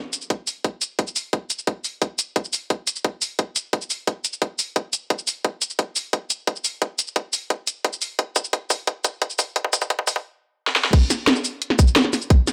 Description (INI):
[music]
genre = drum and bass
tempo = 175 BPM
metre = 4/4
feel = straight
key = none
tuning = none
[part]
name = drum and bass drum kit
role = drums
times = 0.1-12.5 s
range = crash cymbal, hi-hat, shaker, snare drum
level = -24 LUFS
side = equal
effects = none
[part]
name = electronic kick drum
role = drums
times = 0.3-12.4 s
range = none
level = -22 LUFS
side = equal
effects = overdrive, high-pass filter on kick
[sound]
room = digital ambience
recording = high-pass filter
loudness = -23 LUFS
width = mono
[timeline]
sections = 0.0-10.9 A section; 10.9-12.5 B section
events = build-up 0.0-10.9; drum fill 5.4-10.2, 10.7; drop 10.9-12.5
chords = none